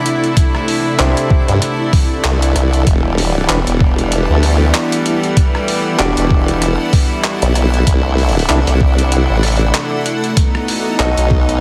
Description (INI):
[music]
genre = glitch hop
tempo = 96 BPM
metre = 4/4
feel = swing 57% on 16ths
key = E minor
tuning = A4 = 440 Hz
[part]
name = rich studio string section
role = sustained chords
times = 0.0-11.6 s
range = C3 to E4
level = -22 LUFS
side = equal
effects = sidechain pumping
[part]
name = granular cloud pad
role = texture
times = 0.0-11.6 s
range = E4 to F#5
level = -25 LUFS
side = equal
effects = built-in reverb, sidechain pumping
[part]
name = boom bap sampler-style drum kit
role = drums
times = 0.1-11.6 s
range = handclaps, hi-hat, rim click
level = -23 LUFS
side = equal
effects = studio reverb
[part]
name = electronic kick drum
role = drums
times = 0.4-11.4 s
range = none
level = -15 LUFS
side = equal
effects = studio reverb
[part]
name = overdriven clav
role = stabs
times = 1.0-11.6 s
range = D4 to D#5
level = -23 LUFS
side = equal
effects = sidechain pumping, dub echo
[part]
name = formant-sweep wobble bass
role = bass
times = 1.0-11.6 s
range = E1 to G2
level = -16 LUFS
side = equal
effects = chorus
[sound]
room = light reverb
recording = heavily compressed radio sound, multiband compression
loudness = -14 LUFS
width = mono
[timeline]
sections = 0.0-11.6 A section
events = none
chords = 0.0 C69; 2.9 Em7; 7.9 C69; 10.4 B7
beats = | 0.37 0.99 1.62 2.24 | 2.87 3.49 4.12 4.74 | 5.37 5.99 6.62 7.24 | 7.87 8.49 9.12 9.74 | 10.37 10.99